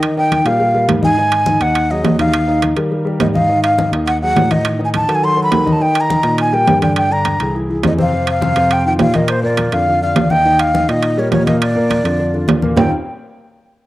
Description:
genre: Afro-Cuban jazz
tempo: 207 BPM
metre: 4/4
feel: straight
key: unclear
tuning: A4 = 440 Hz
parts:
  - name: breathy jazz flute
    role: melody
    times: 0.0-12.9 s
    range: C5 to C6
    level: -16 LUFS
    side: equal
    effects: cassette tape
  - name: warm concert grand piano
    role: accompaniment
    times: 0.0-12.9 s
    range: Bb2 to Eb5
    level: -20 LUFS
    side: left 1 dB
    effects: none
  - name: bright tine electric piano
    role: bass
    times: 0.0-12.9 s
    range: C2 to Eb3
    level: -19 LUFS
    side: equal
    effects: none
  - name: congas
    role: percussion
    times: 0.0-12.8 s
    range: none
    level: -21 LUFS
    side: left 2 dB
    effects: none
  - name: timbales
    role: percussion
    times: 0.0-12.8 s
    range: none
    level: -20 LUFS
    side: right 5 dB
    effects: none
room: wet spring reverb, RT60 1.4 s, small room ambience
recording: home recording on cassette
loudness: -12 LUFS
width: side -16 dB against mid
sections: 0.0-12.8 A section; 12.8-13.9 B section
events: none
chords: 0.0 Ebadd9; 1.2 Ab5; 2.3 Ebadd9; 3.5 Ab5; 4.7 Ebdim; 5.8 Eb; 7.0 Gm; 7.5 Caug; 8.1 F5; 9.3 Bb; 10.4 Ebadd9; 11.6 Bb; 12.8 Ebsus2

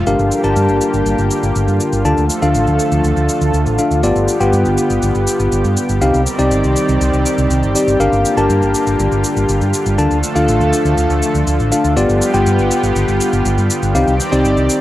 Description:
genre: italo disco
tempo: 121 BPM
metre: 4/4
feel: straight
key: unclear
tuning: A4 = 439 Hz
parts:
  - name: lush unison pad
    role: sustained chords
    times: 0.0-14.8 s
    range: D3 to D5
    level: -19 LUFS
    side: right 1 dB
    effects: chorus
  - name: hollow-body short-scale fingered electric bass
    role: bass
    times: 0.0-14.7 s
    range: G1 to G2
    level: -17 LUFS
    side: equal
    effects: transformer saturation
  - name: bell-like tine electric piano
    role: stabs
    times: 0.1-14.8 s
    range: B3 to A5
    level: -16 LUFS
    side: left 2 dB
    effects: tape echo
  - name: cabasa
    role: drums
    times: 0.1-14.8 s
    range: none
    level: -25 LUFS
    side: equal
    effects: none
room: digital ambience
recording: dry, gritty hardware recording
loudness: -12 LUFS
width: side -14 dB against mid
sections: 0.1-14.8 A section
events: none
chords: 0.1 Gm7; 2.0 Dm; 4.0 G7; 6.0 Cmadd9; 8.0 Gm7; 10.0 Dm; 12.0 G7; 13.9 Cmadd9

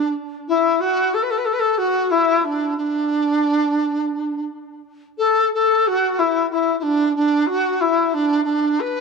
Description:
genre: chinese traditional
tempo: 90 BPM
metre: 4/4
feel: rubato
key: D gong mode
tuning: A4 = 440 Hz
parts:
  - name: large dizi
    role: solo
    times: 0.0-9.0 s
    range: D4 to B4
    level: -17 LUFS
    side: left 1 dB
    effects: analog delay
room: wet small room reverb, RT60 0.6 s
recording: dark, warm production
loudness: -17 LUFS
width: side -4 dB against mid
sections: 0.0-9.0 A section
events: none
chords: none

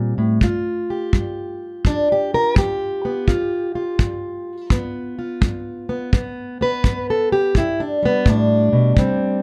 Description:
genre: acoustic country blues, solo or duo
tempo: 84 BPM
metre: 4/4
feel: swing 66% on 8ths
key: G mixolydian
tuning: A4 = 440 Hz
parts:
  - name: fingerpicked plugged-in steel-string acoustic guitar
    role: melody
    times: 0.0-9.4 s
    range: G2 to B4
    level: -21 LUFS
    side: equal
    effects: none
  - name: kick drum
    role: drums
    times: 0.4-9.2 s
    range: none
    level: -20 LUFS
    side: equal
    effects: none
room: moderate small room reverb, RT60 0.5 s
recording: dark, warm production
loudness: -20 LUFS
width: mono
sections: 0.0-6.1 A section; 6.1-9.4 B section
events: steel-string acoustic guitar solo 6.1-9.4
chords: 0.4 G7; 6.1 G

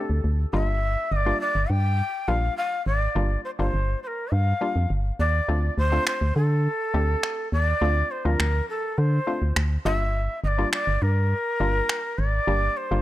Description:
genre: dance-pop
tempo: 103 BPM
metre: 4/4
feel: straight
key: unclear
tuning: A4 = 440 Hz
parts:
  - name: breathy shakuhachi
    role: melody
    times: 0.0-13.0 s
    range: A4 to G5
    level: -26 LUFS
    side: left 1 dB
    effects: analog delay
  - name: hollow square pluck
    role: accompaniment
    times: 0.0-13.0 s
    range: F3 to G4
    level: -30 LUFS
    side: left 2 dB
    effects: chorus
  - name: organ-like FM bass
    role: bass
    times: 0.1-13.0 s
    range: G1 to D3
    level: -23 LUFS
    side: equal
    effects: none
  - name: electronic finger snaps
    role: drums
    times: 6.1-12.0 s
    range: none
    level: -27 LUFS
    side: right 1 dB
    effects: none
room: digital ambience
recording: dry, gritty hardware recording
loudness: -22 LUFS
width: side -14 dB against mid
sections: 0.0-13.0 A section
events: none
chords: 0.0 D7(no3); 0.5 Gm7; 5.5 Dm7; 9.9 Gm7

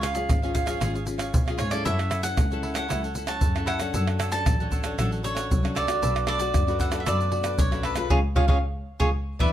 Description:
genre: samba and choro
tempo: 115 BPM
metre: 4/4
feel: straight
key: unclear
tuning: A4 = 440 Hz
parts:
  - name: cavaquinho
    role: melody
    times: 0.0-9.5 s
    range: G#4 to A5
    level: -28 LUFS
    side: right 1 dB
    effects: none
  - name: cavaquinho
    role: accompaniment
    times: 0.0-9.5 s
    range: D4 to F#5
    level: -34 LUFS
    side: right 3 dB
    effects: none
  - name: nylon-string guitar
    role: accompaniment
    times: 0.0-9.5 s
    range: F#2 to A4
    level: -32 LUFS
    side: left 4 dB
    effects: none
  - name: rich double bass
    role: bass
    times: 0.0-9.5 s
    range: G#1 to B2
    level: -29 LUFS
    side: equal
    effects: none
  - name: egg shaker, pandeiro, tamborim and surdo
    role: percussion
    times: 0.0-9.5 s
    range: none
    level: -26 LUFS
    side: equal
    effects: none
room: light reverb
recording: close, detailed microphones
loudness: -22 LUFS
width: side -11 dB against mid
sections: 0.0-9.5 A section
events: band accent 8.1-9.5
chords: 0.0 C#; 1.9 F#m7; 3.9 Dmaj7; 6.0 Bm7; 8.1 C#

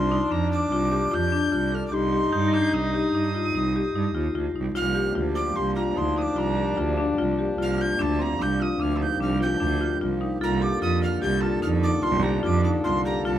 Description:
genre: contemporary instrumental, chamber music in an uneven meter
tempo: 148 BPM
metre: 7/4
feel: straight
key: C dorian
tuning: A4 = 441 Hz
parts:
  - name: breathy alto recorder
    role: melody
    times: 0.0-13.4 s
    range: A5 to G6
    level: -29 LUFS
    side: right 1 dB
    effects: none
  - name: warm French horn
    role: second line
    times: 0.0-13.4 s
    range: D4 to Eb4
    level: -30 LUFS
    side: left 3 dB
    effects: none
  - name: marimba with hard mallets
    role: arpeggios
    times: 0.0-13.4 s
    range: C4 to A4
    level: -26 LUFS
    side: left 5 dB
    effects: none
  - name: rich cello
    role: bass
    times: 0.0-13.4 s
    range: C2 to G2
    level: -26 LUFS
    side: right 4 dB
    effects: none
  - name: crotales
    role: texture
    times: 2.3-3.1, 10.4-11.0 s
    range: G6 to C7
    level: -39 LUFS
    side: right 5 dB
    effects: none
  - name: hand-pumped harmonium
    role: sustained chords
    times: 4.8-13.4 s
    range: D3 to A4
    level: -34 LUFS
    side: right 3 dB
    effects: none
room: light reverb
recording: close, detailed microphones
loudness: -22 LUFS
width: side -11 dB against mid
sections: 0.0-13.4 A section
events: none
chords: 0.0 Csus4; 1.9 Cm7; 10.4 Bbmaj7/C

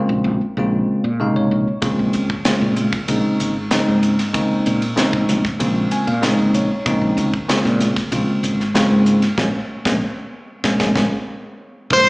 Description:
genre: electric jazz fusion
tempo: 95 BPM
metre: 4/4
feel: straight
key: Bb minor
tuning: A4 = 440 Hz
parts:
  - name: bell-like tine electric piano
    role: accompaniment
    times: 0.0-12.1 s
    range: C3 to Ab5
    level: -18 LUFS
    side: equal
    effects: fast stereo tremolo
  - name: woody fretless electric bass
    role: bass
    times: 0.1-12.1 s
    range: Ab1 to Bb2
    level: -21 LUFS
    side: equal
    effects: none
  - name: crisp fusion drum kit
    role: drums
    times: 1.8-12.1 s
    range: hi-hat, kick drum, ride cymbal, snare drum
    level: -23 LUFS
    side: equal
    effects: none
  - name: congas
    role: percussion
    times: 1.8-12.0 s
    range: none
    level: -26 LUFS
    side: equal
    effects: none
  - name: dark smooth lead guitar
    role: melody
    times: 11.9-12.1 s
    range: C5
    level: -9 LUFS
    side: equal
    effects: overdrive
room: moderate lush hall reverb, RT60 2.2 s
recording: live gig heard through the venue's PA, club reverb, small speaker sound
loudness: -16 LUFS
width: side -27 dB against mid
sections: 0.0-11.9 A section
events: tine electric piano fill 0.9-1.8, 5.6-6.9, 10.0-11.9; band accent 9.4-11.9; drum fill 10.7-11.9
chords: 0.0 Bbm11

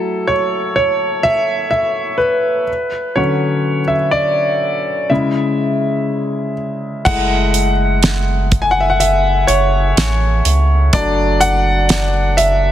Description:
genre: pop ballad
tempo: 62 BPM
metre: 4/4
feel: straight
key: F# minor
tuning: A4 = 441 Hz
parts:
  - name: clear grand piano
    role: accompaniment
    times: 0.0-12.7 s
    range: C#3 to G#5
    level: -15 LUFS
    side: left 1 dB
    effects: none
  - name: warm sub bass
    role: bass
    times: 7.1-12.7 s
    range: F#1 to C#2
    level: -16 LUFS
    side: right 1 dB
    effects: none
  - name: damped 70s drum kit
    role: drums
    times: 7.1-12.6 s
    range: crash cymbal, hi-hat, kick drum, snare drum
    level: -17 LUFS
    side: right 2 dB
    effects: none
room: light reverb, small room ambience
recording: dense, heavily limited modern master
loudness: -13 LUFS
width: side -11 dB against mid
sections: 0.0-7.1 A section; 7.1-12.7 B section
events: grand piano solo 0.0-7.1, 7.1-12.7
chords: 0.0 F#m7; 2.7 Dmaj7; 5.1 C#m; 7.1 F#m7; 10.9 D/F#

